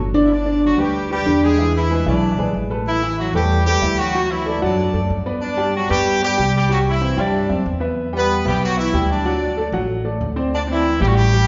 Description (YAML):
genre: latin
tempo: 188 BPM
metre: 4/4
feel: straight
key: G major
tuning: A4 = 440 Hz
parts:
  - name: warm grand piano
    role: accompaniment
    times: 0.0-11.5 s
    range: D3 to G5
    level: -23 LUFS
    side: equal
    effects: none
  - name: upright bass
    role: bass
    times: 0.0-11.5 s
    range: G1 to G2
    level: -24 LUFS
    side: equal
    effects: none
  - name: brilliant horn section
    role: melody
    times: 0.2-11.5 s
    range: E3 to D5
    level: -23 LUFS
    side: equal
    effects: none
room: wet recital hall reverb, RT60 1.5 s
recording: recorded in a church or concert hall, nothing above 7.5 kHz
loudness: -19 LUFS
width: mono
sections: 0.3-10.5 A section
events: none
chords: 0.3 G; 1.6 E7; 2.9 Asus2; 4.1 D; 5.4 G; 6.7 C; 8.0 Em; 9.3 D; 10.5 D9sus4